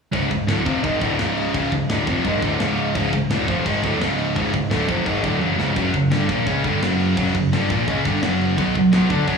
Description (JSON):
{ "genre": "heavy metal", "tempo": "171 BPM", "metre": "4/4", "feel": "straight", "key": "C# phrygian dominant", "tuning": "A4 = 440 Hz", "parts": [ { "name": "sludgy distorted guitar", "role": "riff", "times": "0.1-9.4 s", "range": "C#2 to F#4", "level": "-19 LUFS", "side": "equal", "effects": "overdrive, slapback echo" }, { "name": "growling picked electric bass", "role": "bass", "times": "0.1-9.4 s", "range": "C#1 to F#2", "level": "-26 LUFS", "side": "equal", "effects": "overdrive" }, { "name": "tight metal drum kit", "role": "drums", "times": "0.1-9.4 s", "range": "crash cymbal, kick drum, snare drum, toms", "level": "-28 LUFS", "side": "equal", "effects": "none" } ], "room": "light reverb", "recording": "live gig heard through the venue's PA, club reverb, studio reverb", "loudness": "-18 LUFS", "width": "side -5 dB against mid", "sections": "0.1-9.4 A section", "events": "drum fill 5.4-5.8", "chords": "0.1 C#; 5.8 F#5; 8.6 B5" }